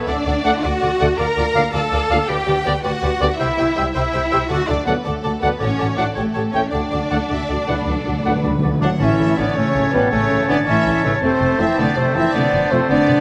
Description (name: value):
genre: cinematic, heroic adventure film score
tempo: 108 BPM (dotted quarters)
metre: 12/8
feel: straight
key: D major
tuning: A4 = 440 Hz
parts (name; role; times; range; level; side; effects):
- warm symphonic violin section; melody; 0.0-13.2 s; A4 to Bb5; -31 LUFS; equal; none
- mellow hollow small flute group; second line; 0.0-13.2 s; B4 to G5; -30 LUFS; equal; none
- warm clarinet; second line; 0.0-13.2 s; A4 to C#5; -31 LUFS; equal; none
- warm oboe; second line; 0.0-13.2 s; C#5 to A5; -30 LUFS; equal; none
- warm symphonic cello section; bass; 0.0-13.2 s; B2 to Bb4; -25 LUFS; equal; none
- warm symphonic violin section; second line; 0.1-13.2 s; A4 to A5; -33 LUFS; equal; none
- warm symphonic viola section; accompaniment; 0.1-13.2 s; E3 to D5; -30 LUFS; equal; none
- warm symphonic double bass section; bass; 0.1-13.2 s; F1 to D2; -27 LUFS; equal; none
- mellow French horn section; sustained chords; 0.4-13.2 s; B3 to D5; -25 LUFS; equal; none
- clear trumpet; stabs; 0.4-13.2 s; G3 to G5; -27 LUFS; equal; none
- clear trombone section; sustained chords; 0.5-12.8 s; A2 to C#4; -30 LUFS; equal; none
- timpani; percussion; 4.5-9.5 s; A2 to D3; -27 LUFS; equal; none
room: moderate concert hall reverb, RT60 2.3 s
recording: none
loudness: -18 LUFS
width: mono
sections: 0.0-9.0 A section; 9.0-13.2 B section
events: timpani fill 6.7-9.0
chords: 0.1 D; 1.2 Bb/D; 2.3 G/D; 3.4 C; 4.5 D; 5.6 D/A; 6.2 A7; 6.7 D; 9.0 A; 11.2 F